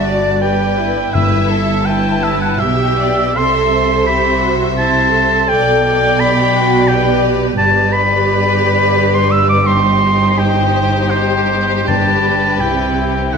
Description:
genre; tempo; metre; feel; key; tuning
classical, slow romantic movement for symphony orchestra; 74-88 BPM; 3/4; rubato; G major; A4 = 441 Hz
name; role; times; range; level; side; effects
warm studio violin section; melody; 0.0-13.4 s; A4 to A5; -23 LUFS; left 6 dB; none
clear oboe; second line; 0.0-13.4 s; C5 to E6; -16 LUFS; equal; none
clear studio violin section; second line; 0.0-13.4 s; E4 to E5; -20 LUFS; left 3 dB; none
rich studio viola section; accompaniment; 0.0-13.4 s; C4 to A4; -20 LUFS; right 1 dB; none
clear studio cello section; bass; 0.0-13.4 s; G2 to D3; -19 LUFS; right 2 dB; none
rich studio double bass section; bass; 0.0-13.4 s; G1 to C2; -20 LUFS; right 3 dB; none
timpani; percussion; 1.1-2.2, 11.9-12.6 s; G2; -20 LUFS; left 2 dB; none
room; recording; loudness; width
moderate scoring stage reverb, RT60 1.9 s; minimal, uncompressed stereo recording; -11 LUFS; side -6 dB against mid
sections
0.0-13.4 A section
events
none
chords
0.0 G; 1.1 Em/G; 3.4 C; 5.5 G/B; 7.6 G; 9.7 Cm/G; 11.9 G; 12.6 Cmaj7

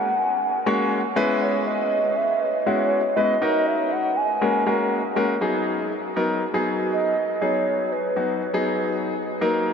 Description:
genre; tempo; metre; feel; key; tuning
pop; 120 BPM; 4/4; straight; G# minor; A4 = 445 Hz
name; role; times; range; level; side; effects
hollow clarinet-like synth lead; melody; 0.0-9.2 s; B4 to G#5; -24 LUFS; right 2 dB; chorus, diffuse ambient delay
clear baby grand piano; accompaniment; 0.0-9.7 s; F#3 to C#5; -22 LUFS; left 2 dB; none
room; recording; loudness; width
wet huge ambient reverb, RT60 9.1 s; dreamy mix soaked in reverb; -20 LUFS; side -6 dB against mid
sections
0.0-5.4 A section; 5.4-9.7 B section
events
drop 0.0-5.4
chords
0.0 F#add9; 1.2 C#m7; 3.4 D#m; 4.4 F#add9; 5.4 G#m7

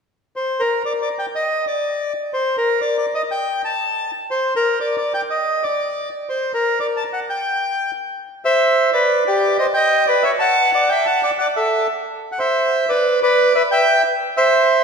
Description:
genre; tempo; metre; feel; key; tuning
tango; 182 BPM; 3/4; rubato; G minor; A4 = 440 Hz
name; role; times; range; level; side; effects
bandoneon; solo; 0.4-14.8 s; G4 to A5; -16 LUFS; equal; none
room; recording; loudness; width
wet concert hall reverb, RT60 2.4 s; recorded in a church or concert hall; -16 LUFS; side -5 dB against mid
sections
0.4-8.3 A section; 8.3-14.8 B section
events
none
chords
0.4 N.C.; 8.3 Bmadd11; 9.3 Cm/G; 10.2 A5; 11.2 Dsus2; 12.2 Bm; 13.2 Em; 14.2 N.C.

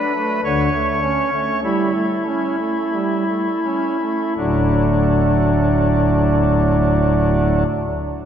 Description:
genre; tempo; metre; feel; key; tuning
classical, chorale-style piece for pipe organ; 41-53 BPM; 3/4; rubato; D major; A4 = 439 Hz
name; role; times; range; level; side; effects
pipe organ, cornet; solo; 0.0-7.6 s; D1 to C#5; -16 LUFS; equal; none
room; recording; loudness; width
wet church reverb, RT60 3.7 s; heard from further back in the room; -16 LUFS; side -9 dB against mid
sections
0.0-4.4 A section; 4.4-8.3 B section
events
slowing down 0.0-4.4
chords
0.4 A7/D; 4.4 D

